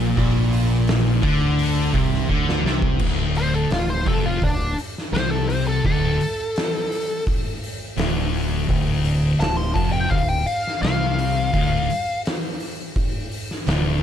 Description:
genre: stoner and doom metal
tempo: 84 BPM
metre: 4/4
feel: straight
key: D minor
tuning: A4 = 440 Hz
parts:
  - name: distorted electric guitar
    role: riff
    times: 0.0-3.0 s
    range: Bb2 to D3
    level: -25 LUFS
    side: left 1 dB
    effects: overdrive
  - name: thick fuzz guitar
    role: riff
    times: 0.0-14.0 s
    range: D2 to D3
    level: -24 LUFS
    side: left 8 dB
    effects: distortion
  - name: thick fuzz guitar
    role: riff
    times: 0.0-14.0 s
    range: D2 to D3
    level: -26 LUFS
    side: right 9 dB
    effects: distortion
  - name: growling fingered electric bass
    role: bass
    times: 0.0-14.0 s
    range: D1 to D2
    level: -24 LUFS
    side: equal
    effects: overdrive
  - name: oversized low-tuned drum kit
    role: drums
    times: 0.2-13.8 s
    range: crash cymbal, hi-hat, kick drum, snare drum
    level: -24 LUFS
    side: equal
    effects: none
  - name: fuzz lead guitar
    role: melody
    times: 3.4-12.2 s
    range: D4 to C6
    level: -25 LUFS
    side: left 1 dB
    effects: wah, distortion, ping-pong delay
room: little or no reverb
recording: dark, warm production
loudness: -19 LUFS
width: side -9 dB against mid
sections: 0.0-3.0 A section; 3.0-14.0 B section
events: drum fill 2.3-3.0; lead electric guitar solo 3.0-14.0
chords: 0.0 Bbadd9; 3.0 Dm

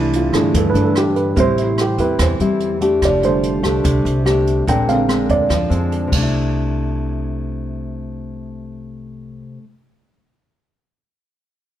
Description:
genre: bossa nova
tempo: 145 BPM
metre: 4/4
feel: straight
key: C major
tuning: A4 = 438 Hz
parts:
  - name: dark baby grand piano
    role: accompaniment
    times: 0.0-6.1 s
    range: C3 to G5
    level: -18 LUFS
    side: right 4 dB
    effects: none
  - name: nylon-string guitar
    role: accompaniment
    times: 0.0-9.7 s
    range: G2 to G4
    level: -20 LUFS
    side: left 3 dB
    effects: none
  - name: upright bass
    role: bass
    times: 0.0-9.4 s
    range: F1 to G2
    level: -22 LUFS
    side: right 1 dB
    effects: none
  - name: jazz brush drum kit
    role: drums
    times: 0.1-6.2 s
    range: crash cymbal, hi-hat, kick drum, rim click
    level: -24 LUFS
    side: right 1 dB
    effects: none
room: light reverb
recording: none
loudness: -15 LUFS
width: side -11 dB against mid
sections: 0.0-6.3 A section; 6.3-9.6 B section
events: grand piano solo 0.0-6.3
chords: 0.0 C69; 1.4 Am7; 3.0 F69; 4.7 Bb9; 6.1 C69

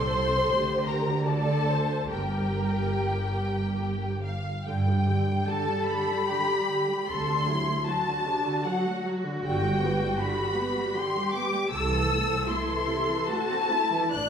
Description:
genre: classical, slow romantic movement for string orchestra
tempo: 68-81 BPM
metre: 3/4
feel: rubato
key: G minor, G major from 4.7 s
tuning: A4 = 440 Hz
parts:
  - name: warm symphonic violin section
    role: melody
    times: 0.0-14.3 s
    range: F5 to F#6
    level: -32 LUFS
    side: left 4 dB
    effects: none
  - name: warm symphonic violin section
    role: second line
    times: 0.0-14.3 s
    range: G4 to F#6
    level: -31 LUFS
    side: left 1 dB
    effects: none
  - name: warm symphonic viola section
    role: accompaniment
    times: 0.0-14.3 s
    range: C3 to D5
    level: -31 LUFS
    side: equal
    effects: none
  - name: warm symphonic cello section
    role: bass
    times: 0.0-14.3 s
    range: G2 to A4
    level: -33 LUFS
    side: right 2 dB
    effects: none
  - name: warm symphonic double bass section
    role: bass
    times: 0.0-14.3 s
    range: G1 to G2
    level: -29 LUFS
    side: right 1 dB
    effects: none
room: wet recital hall reverb, RT60 1.6 s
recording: heard from further back in the room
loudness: -24 LUFS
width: side -8 dB against mid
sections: 0.0-4.7 A section; 4.7-14.3 B section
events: none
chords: 0.5 D5; 2.1 Gm; 4.7 G; 7.1 D7; 9.4 G; 11.7 Am/C

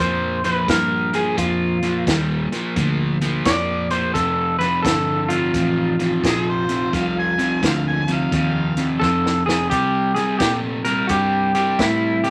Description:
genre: electric blues shuffle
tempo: 86 BPM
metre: 4/4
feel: swing 64% on 8ths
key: F mixolydian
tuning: A4 = 441 Hz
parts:
  - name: electric guitar through a small old amp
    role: melody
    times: 0.0-12.3 s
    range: E4 to D5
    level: -24 LUFS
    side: equal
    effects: none
  - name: overdriven semi-hollow guitar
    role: riff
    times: 0.0-12.3 s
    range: F2 to A3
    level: -25 LUFS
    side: equal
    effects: none
  - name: vintage muted fingered electric bass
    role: bass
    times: 0.0-12.3 s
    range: F1 to C3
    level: -28 LUFS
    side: equal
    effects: none
  - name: compact cocktail drum kit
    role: drums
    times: 0.0-12.3 s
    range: hi-hat, kick drum, snare drum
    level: -26 LUFS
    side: equal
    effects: none
  - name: overdriven harmonica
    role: second line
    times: 6.3-8.9 s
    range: Ab4 to Ab5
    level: -27 LUFS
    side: equal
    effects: none
room: moderate studio reverb, RT60 0.8 s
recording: none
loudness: -20 LUFS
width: mono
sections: 0.0-12.3 A section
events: drum fill 9.0-9.7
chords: 0.0 Bb; 4.2 F7; 9.7 C5

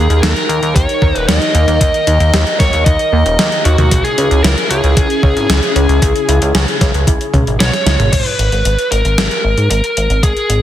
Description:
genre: synthwave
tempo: 114 BPM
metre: 4/4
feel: straight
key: unclear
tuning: A4 = 440 Hz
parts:
  - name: biting lead guitar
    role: melody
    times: 0.0-10.6 s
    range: F#4 to D#5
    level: -16 LUFS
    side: equal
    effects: overdrive, vintage 12-bit sampler grit, tape echo, shimmer reverb
  - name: phased analog pad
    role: sustained chords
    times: 0.0-8.1 s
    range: C#3 to G5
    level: -22 LUFS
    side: left 1 dB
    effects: phaser, chorus, sidechain pumping, shimmer reverb
  - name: soft round pluck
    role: arpeggios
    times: 0.0-8.1 s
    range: G3 to C#5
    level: -25 LUFS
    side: right 4 dB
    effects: chorus, tape echo, shimmer reverb
  - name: chorused synth bass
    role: bass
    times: 0.0-10.6 s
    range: D#1 to G#2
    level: -14 LUFS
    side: equal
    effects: sidechain pumping
  - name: gated 80s digital drum machine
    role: drums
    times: 0.1-10.6 s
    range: crash cymbal, hi-hat, snare drum, toms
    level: -17 LUFS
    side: equal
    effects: gated reverb, gated reverb snare, overdrive
  - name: electronic kick drum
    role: drums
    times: 0.8-10.3 s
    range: none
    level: -14 LUFS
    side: equal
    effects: overdrive
room: light reverb, digital ambience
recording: dense, heavily limited modern master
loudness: -10 LUFS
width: side -12 dB against mid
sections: 0.0-8.1 A section; 8.1-10.6 B section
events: drum fill 7.7-8.1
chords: 0.0 D#; 3.9 C#m; 8.1 N.C.

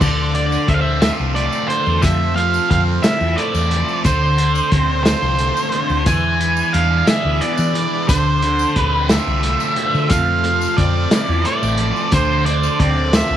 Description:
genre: psychedelic rock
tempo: 59 BPM (dotted quarters)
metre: 6/8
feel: straight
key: unclear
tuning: A4 = 441 Hz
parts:
  - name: octave-fuzz lead guitar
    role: melody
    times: 0.0-13.4 s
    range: C5 to G#5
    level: -19 LUFS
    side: right 2 dB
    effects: distortion, tape echo
  - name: overdriven combo organ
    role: sustained chords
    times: 0.0-13.4 s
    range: E3 to D4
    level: -30 LUFS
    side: right 13 dB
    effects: spring reverb
  - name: thick fuzz guitar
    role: riff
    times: 0.0-13.4 s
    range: D3 to G#4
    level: -21 LUFS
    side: equal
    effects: distortion, phaser
  - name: hollow-body short-scale fingered electric bass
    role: bass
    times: 0.0-13.4 s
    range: A1 to E3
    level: -19 LUFS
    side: left 1 dB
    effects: none
  - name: vintage drum kit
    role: drums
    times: 0.0-13.3 s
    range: crash cymbal, hi-hat, kick drum, snare drum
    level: -19 LUFS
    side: equal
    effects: none
  - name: tambourine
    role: percussion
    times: 0.0-13.4 s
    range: none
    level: -34 LUFS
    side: left 13 dB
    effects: none
room: light reverb, studio ambience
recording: 1960s-style stereo with parts hard left and right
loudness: -14 LUFS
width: side -10 dB against mid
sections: 0.0-13.4 A section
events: none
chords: 0.0 Dm7; 2.0 Fmaj7; 4.1 Dm7; 6.1 E7; 8.1 Dm7; 10.1 Fmaj7; 12.1 Dm7

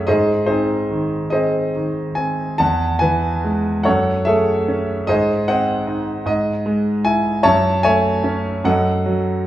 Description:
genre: classical, lyrical solo piano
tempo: 47-52 BPM (dotted quarters)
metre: 6/8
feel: rubato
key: unclear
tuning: A4 = 442 Hz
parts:
  - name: clear concert grand piano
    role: solo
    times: 0.0-9.5 s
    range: E2 to A5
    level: -16 LUFS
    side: equal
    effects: none
room: moderate recital hall reverb, RT60 1.6 s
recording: recorded in a church or concert hall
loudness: -16 LUFS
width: side -13 dB against mid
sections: 0.0-9.5 A section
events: none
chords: 0.1 G#; 2.6 Eadd9; 3.9 F#madd9; 5.1 G#; 6.3 Emaj7/G#; 7.5 F#m7; 8.7 D#dim/F#

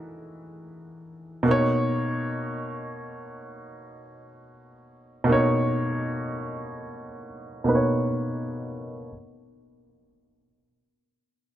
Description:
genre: R&B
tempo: free time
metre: none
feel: none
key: B major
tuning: A4 = 439 Hz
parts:
  - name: clear grand piano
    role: solo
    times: 0.0-9.1 s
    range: B2 to C#5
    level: -25 LUFS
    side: equal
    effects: none
room: moderate plate reverb, RT60 2.6 s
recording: low-pass filter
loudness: -23 LUFS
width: side -12 dB against mid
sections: 0.0-1.5 A section; 1.5-9.1 B section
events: filter sweep 1.5-9.1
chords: 0.0 Emaj7sus2; 1.5 Bmaj9

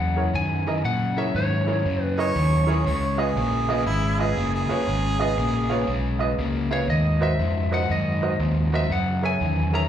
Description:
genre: electric blues shuffle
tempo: 119 BPM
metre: 4/4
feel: swing 66% on 8ths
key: unclear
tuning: A4 = 439 Hz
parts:
  - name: lightly driven lead guitar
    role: melody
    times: 0.0-2.3, 6.7-9.9 s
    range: Db5 to Bb5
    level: -28 LUFS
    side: left 1 dB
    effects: slapback echo, tape echo
  - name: overdriven semi-hollow guitar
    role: riff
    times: 0.0-9.9 s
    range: Gb2 to Bb3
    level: -26 LUFS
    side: left 3 dB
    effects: spring reverb
  - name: vintage muted fingered electric bass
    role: bass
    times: 0.0-9.9 s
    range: Gb1 to Bb2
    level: -25 LUFS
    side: equal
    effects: none
  - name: clear upright piano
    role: accompaniment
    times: 0.2-9.8 s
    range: Fb4 to F5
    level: -28 LUFS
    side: right 5 dB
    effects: slapback echo
  - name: clear harmonica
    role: second line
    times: 2.2-6.0 s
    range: Fb4 to Db5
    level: -27 LUFS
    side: right 2 dB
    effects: overdrive, slapback echo, tape echo
room: moderate plate reverb, RT60 2.7 s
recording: live gig heard through the venue's PA, club reverb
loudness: -21 LUFS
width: side -10 dB against mid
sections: 0.0-9.9 A section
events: none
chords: 0.0 Gb7; 2.9 Db7; 6.9 Ab7; 8.9 Gb7

